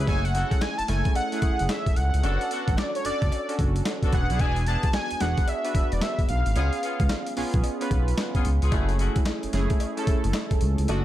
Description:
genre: R&B, new jack swing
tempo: 111 BPM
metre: 4/4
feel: swing 63% on 16ths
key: F# minor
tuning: A4 = 439 Hz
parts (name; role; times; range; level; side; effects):
- warm analog keys; accompaniment; 0.0-11.0 s; A3 to B4; -30 LUFS; right 2 dB; chorus
- clear horn section; stabs; 0.0-11.0 s; A3 to B4; -34 LUFS; left 3 dB; none
- smooth gliding synth bass; bass; 0.0-11.0 s; E1 to C#2; -24 LUFS; equal; none
- wide unison lead; melody; 0.1-7.3 s; C#5 to A5; -30 LUFS; equal; none
- boom bap sampler-style drum kit; drums; 0.1-11.0 s; handclaps, hi-hat, kick drum, snare drum; -26 LUFS; equal; overdrive
- cowbell; percussion; 0.1-11.0 s; none; -42 LUFS; left 11 dB; none
room: little or no reverb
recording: none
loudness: -22 LUFS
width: side -13 dB against mid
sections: 0.1-11.0 A section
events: none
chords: 0.1 F#m7; 2.2 Bm7/F#; 4.1 E7; 6.6 C#7; 8.7 F#m7

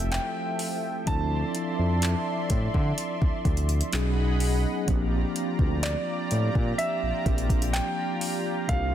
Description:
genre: contemporary R&B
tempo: 63 BPM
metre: 4/4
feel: straight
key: unclear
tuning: A4 = 440 Hz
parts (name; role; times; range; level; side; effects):
- dark concert grand piano; melody; 0.0-8.9 s; D5 to A5; -32 LUFS; right 2 dB; digital delay
- mellow tine electric piano; accompaniment; 0.0-8.9 s; E3 to A4; -31 LUFS; equal; medium stereo tremolo
- lush unison pad; sustained chords; 0.0-8.9 s; F3 to C6; -33 LUFS; equal; chorus
- smooth synth bass; bass; 0.0-8.9 s; F1 to D3; -26 LUFS; equal; none
- smooth R&B drum kit; drums; 0.0-8.9 s; handclaps, hi-hat, kick drum; -28 LUFS; equal; soft clipping on snare
room: light reverb, digital ambience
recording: dense, heavily limited modern master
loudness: -24 LUFS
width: side -10 dB against mid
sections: 0.0-8.9 A section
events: none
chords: 0.0 Fmaj9; 1.1 Dm9; 3.9 B6; 4.9 Bb6

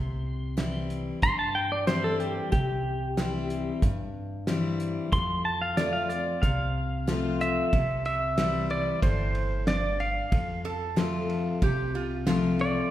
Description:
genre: honky-tonk and classic country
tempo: 92 BPM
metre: 4/4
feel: straight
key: F major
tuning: A4 = 440 Hz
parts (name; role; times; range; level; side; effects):
- pedal steel guitar; melody; 0.0-12.9 s; G4 to C6; -28 LUFS; right 1 dB; none
- picked steel-string acoustic guitar; accompaniment; 0.0-12.9 s; F2 to F4; -30 LUFS; left 3 dB; none
- upright bass; bass; 0.0-12.8 s; G1 to G2; -33 LUFS; right 1 dB; none
- cloth-damped thuddy drum kit; drums; 0.6-12.7 s; hi-hat, kick drum, ride cymbal, snare drum; -29 LUFS; right 1 dB; none
- lap resonator guitar; second line; 10.7-12.6 s; F4 to A4; -34 LUFS; right 4 dB; none
room: wet recital hall reverb, RT60 1.4 s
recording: recorded in a church or concert hall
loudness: -25 LUFS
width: side -13 dB against mid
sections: 0.0-7.7 A section; 7.7-12.9 B section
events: pedal steel guitar solo 0.0-7.7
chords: 0.0 C; 5.1 F; 7.7 C; 10.3 F

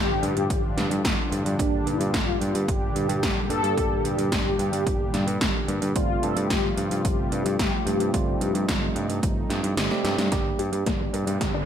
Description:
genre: synthwave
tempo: 110 BPM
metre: 4/4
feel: straight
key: G minor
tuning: A4 = 440 Hz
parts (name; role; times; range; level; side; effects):
- mellow synth brass; melody; 0.0-9.7 s; D4 to A4; -29 LUFS; left 2 dB; chorus, tape echo
- warm analog pad; sustained chords; 0.0-11.7 s; A2 to Bb5; -31 LUFS; left 1 dB; chorus, sidechain pumping
- overdriven picked electric bass; bass; 0.0-11.6 s; G1 to G2; -28 LUFS; equal; tube saturation, sidechain pumping
- 80s electronic pad drums; drums; 0.2-11.5 s; hi-hat, snare drum; -28 LUFS; equal; overdrive
- electronic kick drum; drums; 0.5-11.5 s; none; -28 LUFS; equal; overdrive
- tine electric piano; stabs; 1.6-11.7 s; G3 to G4; -31 LUFS; right 4 dB; vintage 12-bit sampler grit, ping-pong delay
- analog pluck; arpeggios; 10.3-11.6 s; G3 to Bb4; -33 LUFS; left 5 dB; none
- riser; sound effects; 11.0-11.7 s; none; -35 LUFS; equal; none
room: light reverb, digital ambience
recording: none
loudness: -22 LUFS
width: side -9 dB against mid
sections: 0.0-10.3 A section; 10.3-11.7 B section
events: kick drops out 9.8-10.3; drum fill 9.9-10.3, 10.3-11.7; riser 11.0-11.7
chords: 0.0 Dm/G; 1.6 Gm; 6.0 Fadd9/G; 10.3 Gm

